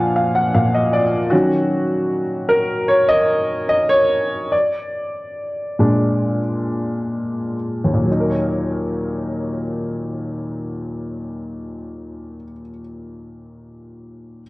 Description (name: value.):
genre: pop.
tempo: 62-77 BPM.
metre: 4/4.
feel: straight.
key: Eb minor.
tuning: A4 = 440 Hz.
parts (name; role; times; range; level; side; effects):
direct-recorded clean electric guitar; melody; 0.0-0.5 s; D4; -36 LUFS; right 1 dB; none.
warm upright piano; accompaniment; 0.0-14.4 s; Eb2 to Ab5; -18 LUFS; equal; none.
room: moderate recital hall reverb, RT60 1.4 s, small room ambience.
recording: worn, warbling old tape, cassette tape, warbly pitch drift.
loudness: -17 LUFS.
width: side -20 dB against mid.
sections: 0.0-1.3 A section; 1.3-8.1 B section; 8.1-11.9 C section.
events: upright piano fill 0.0-1.3; slowing down 1.3-8.1; upright piano solo 1.3-8.1.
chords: 0.0 Bb; 1.3 Ebm7; 4.5 Bb7; 8.1 Ebm7.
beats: 0.55 | 1.32 2.11 2.90 3.70 | 4.52 5.36 6.23 7.13 | 8.07 9.03 9.99 10.95.